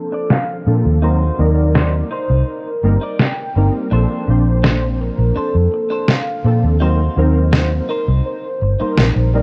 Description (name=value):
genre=vaporwave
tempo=83 BPM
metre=4/4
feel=straight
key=Bb major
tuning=A4 = 440 Hz
part: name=warm velvety synth lead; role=melody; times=0.0-9.4 s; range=A4 to G5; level=-26 LUFS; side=equal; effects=chorus, tape echo
part: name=warbly lo-fi synth keys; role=accompaniment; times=0.0-9.4 s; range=F3 to C5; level=-24 LUFS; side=equal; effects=ensemble chorus
part: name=clean electric guitar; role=riff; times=0.1-9.4 s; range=D4 to D5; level=-31 LUFS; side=equal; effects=lush chorus, analog delay
part: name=electronic snare drum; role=drums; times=0.3-9.1 s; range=none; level=-18 LUFS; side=equal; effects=none
part: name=vintage muted fingered electric bass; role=bass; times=0.7-9.4 s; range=G1 to Bb2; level=-17 LUFS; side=equal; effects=tube saturation
room=light reverb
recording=cassette tape, low-pass filter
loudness=-16 LUFS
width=mono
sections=0.0-9.4 A section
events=filter sweep on drum 0.0-9.4; filter sweep on clean electric guitar 0.0-9.4; filter sweep 0.0-9.4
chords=0.0 Bbmaj9; 1.0 Ebm6; 2.1 Cm7; 3.9 Bbmaj9; 6.8 Ebm6; 7.9 Cm7